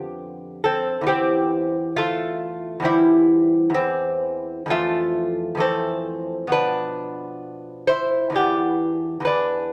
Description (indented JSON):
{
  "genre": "classical, baroque-style dance for lute",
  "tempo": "67 BPM",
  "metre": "4/4",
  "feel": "rubato",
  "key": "C major",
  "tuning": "A4 = 440 Hz",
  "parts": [
    { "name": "lute", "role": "solo", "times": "0.0-9.7 s", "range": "E2 to C5", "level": "-22 LUFS", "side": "equal", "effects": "none" }
  ],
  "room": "light reverb",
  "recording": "none",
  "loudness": "-22 LUFS",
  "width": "mono",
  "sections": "0.0-9.7 A section",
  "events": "none",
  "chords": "0.0 G7/F; 1.1 C/E; 4.7 Fmaj7; 6.5 Bdim; 8.4 Em7",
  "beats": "0.23 | 1.09 1.96 2.85 3.75 | 4.71 5.62 6.52 7.43 | 8.35 9.25"
}